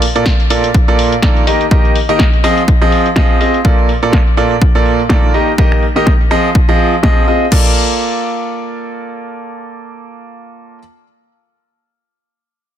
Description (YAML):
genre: piano house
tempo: 124 BPM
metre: 4/4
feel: swing 56% on 16ths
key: Bb major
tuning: A4 = 440 Hz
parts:
  - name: clear grand piano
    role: riff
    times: 0.0-10.8 s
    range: Bb2 to Eb5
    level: -14 LUFS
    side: right 1 dB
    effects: sidechain pumping, ping-pong delay
  - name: house drum kit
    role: drums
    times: 0.0-7.6 s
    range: crash cymbal, finger snaps, hi-hat, snare drum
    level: -20 LUFS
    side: left 1 dB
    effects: low-pass filter on hats, soft clipping on snare, low-pass filter on snare, low-pass filter on cymbals
  - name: electronic kick drum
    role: drums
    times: 0.3-7.6 s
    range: none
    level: -12 LUFS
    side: equal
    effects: none
room: little or no reverb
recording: dense, heavily limited modern master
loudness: -9 LUFS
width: side -10 dB against mid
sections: 0.0-7.5 A section; 7.5-11.4 B section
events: filter sweep on drum 0.0-7.5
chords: 0.0 Bbmaj7; 1.5 Eb; 2.4 Fm7; 3.6 Bbmaj7; 5.3 Eb; 6.3 Fm7; 7.5 Bbmaj7